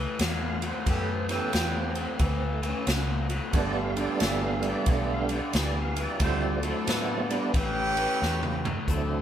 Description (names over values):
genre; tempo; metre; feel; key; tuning
electric blues shuffle; 90 BPM; 4/4; swing 64% on 8ths; unclear; A4 = 436 Hz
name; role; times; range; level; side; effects
raw garage guitar; riff; 0.0-9.2 s; G2 to B3; -31 LUFS; left 3 dB; overdrive, spring reverb
vintage muted fingered electric bass; bass; 0.0-9.2 s; G1 to A2; -31 LUFS; equal; none
tonewheel organ; accompaniment; 0.2-9.2 s; E3 to F5; -31 LUFS; right 5 dB; slow rotary speaker, overdrive, chorus vibrato
swinging big-band drum kit; drums; 0.2-9.1 s; hi-hat, kick drum, ride cymbal, snare drum, toms; -30 LUFS; equal; none
bright horn section; stabs; 0.9-8.7 s; G3 to G5; -32 LUFS; right 1 dB; none
room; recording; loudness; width
moderate studio reverb, RT60 0.8 s; band playing live in one room; -25 LUFS; side -10 dB against mid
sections
0.0-8.9 A section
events
drum fill 8.2-8.9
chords
0.0 A9; 3.5 G9; 6.2 D9; 7.5 A9